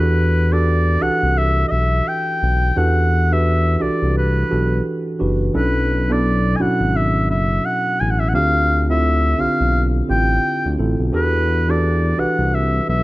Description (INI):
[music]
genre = R&B, neo-soul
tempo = 86 BPM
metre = 4/4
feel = swing 58% on 16ths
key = E minor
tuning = A4 = 438 Hz
[part]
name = warm oboe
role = melody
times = 0.0-13.0 s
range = B4 to G#5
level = -20 LUFS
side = equal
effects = plate reverb
[part]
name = tine electric piano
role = accompaniment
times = 0.0-13.0 s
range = B2 to B4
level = -21 LUFS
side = right 1 dB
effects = plate reverb
[part]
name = smooth synth bass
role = bass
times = 0.0-13.0 s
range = F#1 to E2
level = -18 LUFS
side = equal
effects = none
[sound]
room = moderate small room reverb, RT60 0.6 s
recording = none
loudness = -15 LUFS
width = side -18 dB against mid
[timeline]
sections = 0.0-13.0 A section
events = none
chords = 0.0 Em11; 5.5 Bm11; 8.3 Dm11; 11.1 Em11